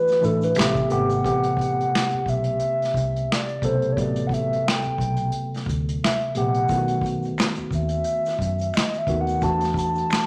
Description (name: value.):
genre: R&B, neo-soul.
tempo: 88 BPM.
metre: 4/4.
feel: swing 56% on 16ths.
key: A dorian.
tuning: A4 = 443 Hz.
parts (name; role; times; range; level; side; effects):
hollow clarinet-like synth lead; melody; 0.0-10.3 s; A4 to A5; -27 LUFS; equal; chorus.
tine electric piano; accompaniment; 0.0-10.3 s; C3 to A4; -28 LUFS; equal; overdrive.
unplugged drum kit; drums; 0.1-10.3 s; finger snaps, hi-hat, kick drum, snare drum; -28 LUFS; equal; none.
egg shaker and finger snaps; percussion; 0.1-1.2, 6.7-10.3 s; none; -43 LUFS; equal; none.
vintage muted fingered electric bass; bass; 0.2-10.0 s; G#1 to A2; -30 LUFS; equal; none.
room: moderate large studio reverb, RT60 0.8 s.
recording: none.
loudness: -23 LUFS.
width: mono.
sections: 0.0-1.2 A section; 1.2-10.3 B section.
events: soft synth lead solo 0.0-1.2.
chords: 0.0 E9sus4; 0.6 Am9; 6.7 B7; 9.4 E9sus4.